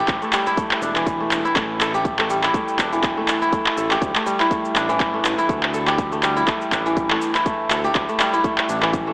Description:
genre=afro house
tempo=122 BPM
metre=4/4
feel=swing 56% on 16ths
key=unclear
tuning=A4 = 441 Hz
part: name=kora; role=arpeggios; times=0.0-9.1 s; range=E3 to A4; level=-20 LUFS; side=equal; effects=sidechain pumping, diffuse ambient delay
part: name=smooth synth bass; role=bass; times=0.0-9.1 s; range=E1 to D2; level=-29 LUFS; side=equal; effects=sidechain pumping
part: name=electronic handclaps and shaker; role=drums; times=0.1-9.0 s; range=none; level=-22 LUFS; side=equal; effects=none
part: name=electronic kick drum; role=drums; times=0.1-9.0 s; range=none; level=-25 LUFS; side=equal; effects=none
room=moderate cathedral reverb, RT60 6.4 s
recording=dreamy mix soaked in reverb, small speaker sound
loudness=-17 LUFS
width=side -27 dB against mid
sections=0.0-9.1 A section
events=none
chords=0.0 A5; 4.0 Dsus4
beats=| 0.08 0.57 1.07 1.56 | 2.05 2.54 3.03 3.52 | 4.02 4.51 5.00 5.49 | 5.98 6.48 6.97 7.46 | 7.95 8.44 8.94

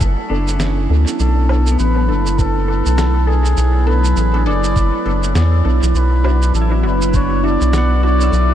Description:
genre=ambient dub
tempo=101 BPM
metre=4/4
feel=swing 59% on 16ths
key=B minor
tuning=A4 = 444 Hz
part: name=warbly tape-like pad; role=sustained chords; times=0.0-8.5 s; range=F#3 to E5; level=-21 LUFS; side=right 1 dB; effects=chorus, built-in reverb, phaser
part: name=pedal steel guitar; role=arpeggios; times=0.0-3.0, 6.6-8.5 s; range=B3 to B5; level=-28 LUFS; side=equal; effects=ping-pong delay
part: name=round analog bass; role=bass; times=0.0-8.5 s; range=F#1 to E2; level=-15 LUFS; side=equal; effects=none
part: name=electronic cabasa, snare drum and woodblock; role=drums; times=0.0-8.5 s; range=none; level=-28 LUFS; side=right 2 dB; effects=dub echo
part: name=electronic kick drum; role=drums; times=0.0-7.3 s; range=none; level=-18 LUFS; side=equal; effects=none
part: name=filtered dub chord stab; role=stabs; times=0.3-8.2 s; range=B3 to A4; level=-27 LUFS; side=left 2 dB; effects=phaser, cassette tape, dub echo
part: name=trumpet with cup mute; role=melody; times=1.2-8.5 s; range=G#4 to D5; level=-22 LUFS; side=left 1 dB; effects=ping-pong delay
room=light reverb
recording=none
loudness=-13 LUFS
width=side -10 dB against mid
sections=0.0-8.5 A section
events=none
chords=0.0 Bm7; 5.9 Dadd9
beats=0.01 0.60 | 1.20 1.79 2.38 2.98 | 3.57 4.17 4.76 5.36 | 5.95 6.54 7.14 7.73 | 8.33

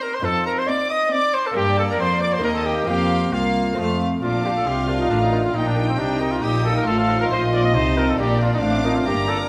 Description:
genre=classical, baroque-style concerto movement with solo episodes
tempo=136 BPM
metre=3/4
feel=straight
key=Bb major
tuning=A4 = 442 Hz
part: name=clear trumpet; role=melody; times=0.0-9.5 s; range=C4 to Eb5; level=-26 LUFS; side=equal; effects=none
part: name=rich chamber violin section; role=melody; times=0.0-9.5 s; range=F5 to Eb6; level=-34 LUFS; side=equal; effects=none
part: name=rich chamber violin section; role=second line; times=0.0-9.5 s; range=D5 to Bb5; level=-30 LUFS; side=equal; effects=none
part: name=lute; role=accompaniment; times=0.0-9.5 s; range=Eb2 to Bb4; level=-29 LUFS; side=equal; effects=none
part: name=warm chamber viola section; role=accompaniment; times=0.0-9.5 s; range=A3 to F4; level=-29 LUFS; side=equal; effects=none
part: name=warm chamber cello section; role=bass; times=0.2-9.5 s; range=C2 to C3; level=-27 LUFS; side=equal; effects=none
part: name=warm chamber double bass section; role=bass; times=4.2-9.5 s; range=G1 to C2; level=-28 LUFS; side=equal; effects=none
room=moderate recital hall reverb, RT60 1.5 s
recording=none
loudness=-20 LUFS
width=mono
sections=0.0-4.2 A section; 4.2-9.5 A section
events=none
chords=0.2 F5; 1.6 Gm; 2.4 Eb; 2.9 Fsus4; 3.8 F; 4.2 Bb; 5.5 Eb/Bb; 6.9 F7/A; 8.2 Bb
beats=| 0.24 0.68 1.11 | 1.55 1.99 2.44 | 2.88 3.33 3.78 | 4.22 4.67 5.11 | 5.55 5.99 6.43 | 6.87 7.31 7.75 | 8.19 8.63 9.07

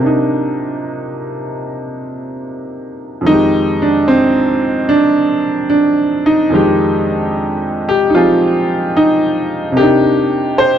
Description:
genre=solo jazz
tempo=74 BPM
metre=4/4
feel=swing 69% on 8ths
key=unclear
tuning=A4 = 440 Hz
part: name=bright upright piano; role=solo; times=0.0-10.8 s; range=F2 to C5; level=-12 LUFS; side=equal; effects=none
room=light reverb, small room reverb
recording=dry, close 1970s-style studio recording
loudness=-11 LUFS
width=side -9 dB against mid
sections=0.0-10.8 A section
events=none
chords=0.0 Cm9; 3.3 Fm9; 9.8 Cm9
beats=| 0.01 0.82 1.64 2.45 | 3.27 4.08 4.89 5.71 | 6.52 7.33 8.14 8.96 | 9.77 10.58

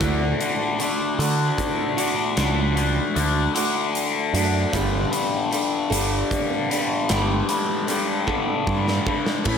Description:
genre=quiet-loud alternative rock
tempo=51 BPM (dotted quarters)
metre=6/8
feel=straight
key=unclear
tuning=A4 = 440 Hz
part: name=picked steel-string acoustic guitar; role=arpeggios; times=0.0-9.6 s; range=A2 to A4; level=-28 LUFS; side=right 6 dB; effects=none
part: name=raw garage guitar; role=riff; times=0.0-9.6 s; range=G2 to D4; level=-23 LUFS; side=left 6 dB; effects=overdrive, phaser
part: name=growling picked electric bass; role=bass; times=0.0-9.6 s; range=G1 to D3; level=-23 LUFS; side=right 2 dB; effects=overdrive
part: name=huge arena drum kit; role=drums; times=0.0-9.6 s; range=crash cymbal, hi-hat, kick drum, snare drum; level=-27 LUFS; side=right 1 dB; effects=none
room=light reverb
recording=none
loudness=-20 LUFS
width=side -7 dB against mid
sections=0.0-9.5 A section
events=half time 0.0-9.5; drum fill 8.3-9.5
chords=0.0 D; 4.7 Gadd9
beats=| 0.01 1.19 | 2.37 3.55 | 4.74 5.92 | 7.10 8.28 | 9.47

